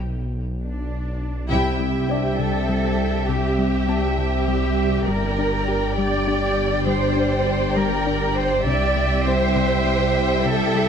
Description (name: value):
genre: cinematic, hybrid orchestral and electronic film score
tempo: 67 BPM (dotted quarters)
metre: 6/8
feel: straight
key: unclear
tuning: A4 = 440 Hz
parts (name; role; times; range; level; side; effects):
- dark detuned saw bass; bass; 0.0-10.9 s; G1 to C2; -26 LUFS; equal; none
- warm symphonic cello section; bass; 0.6-10.9 s; D4 to D5; -24 LUFS; right 2 dB; none
- warm symphonic violin section; second line; 1.5-10.9 s; D5 to G5; -27 LUFS; left 2 dB; none
- warm symphonic viola section; accompaniment; 1.5-10.9 s; G3 to G4; -31 LUFS; right 1 dB; none
- dark French horn section; sustained chords; 1.5-10.9 s; G3 to E4; -29 LUFS; left 6 dB; none
- dark analog pad; sustained chords; 1.8-10.9 s; G3 to E5; -29 LUFS; right 2 dB; chorus
- thumb-piano-like synth pluck; arpeggios; 1.5-10.9 s; C3 to G4; -28 LUFS; left 4 dB; chorus, ping-pong delay
- warm studio double bass section; bass; 1.5-10.9 s; G1 to C2; -27 LUFS; right 4 dB; none
- clear concert grand piano; texture; 2.1-10.9 s; D4 to A5; -34 LUFS; left 2 dB; none
room: moderate concert hall reverb, RT60 2.3 s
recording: none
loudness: -19 LUFS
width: side -7 dB against mid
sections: 0.0-1.5 A section; 1.5-10.9 B section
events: break 0.0-1.5; band accent 1.5-2.1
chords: 0.0 Bm; 1.5 C; 5.1 Gm; 8.7 C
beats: 0.61 | 1.50 2.40 | 3.29 4.19 | 5.08 5.98 | 6.88 7.77 | 8.67 9.56 | 10.46